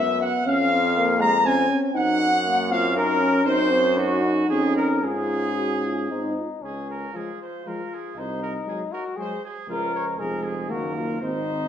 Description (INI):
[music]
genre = classical, brass quintet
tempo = 118 BPM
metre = 3/4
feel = rubato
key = Db major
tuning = A4 = 438 Hz
[part]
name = dark cornet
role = melody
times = 0.0-11.7 s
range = Db4 to Bb5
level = -25 LUFS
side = left 5 dB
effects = none
[part]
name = bright trumpet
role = second line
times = 0.0-11.7 s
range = F4 to Bb5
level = -28 LUFS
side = right 5 dB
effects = none
[part]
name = mellow euphonium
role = accompaniment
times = 0.0-11.7 s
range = Eb3 to Gb4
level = -28 LUFS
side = right 2 dB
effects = none
[part]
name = warm French horn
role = accompaniment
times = 0.0-11.7 s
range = Ab3 to Eb4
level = -27 LUFS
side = left 1 dB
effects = none
[part]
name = bright bass trombone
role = bass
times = 0.0-11.7 s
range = F1 to Ab2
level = -29 LUFS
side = right 3 dB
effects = none
[sound]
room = wet recital hall reverb, RT60 1.2 s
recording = none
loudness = -20 LUFS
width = side -9 dB against mid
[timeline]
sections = 0.0-6.6 A section; 6.6-11.7 B section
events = none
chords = 0.5 Db/F; 2.0 Ebm/Gb; 3.5 Cdim/Gb; 4.5 Db/F; 5.0 Db/Ab; 6.1 Ab; 6.6 Db; 8.2 Ab7/C; 9.7 Db; 10.7 Ebm/Gb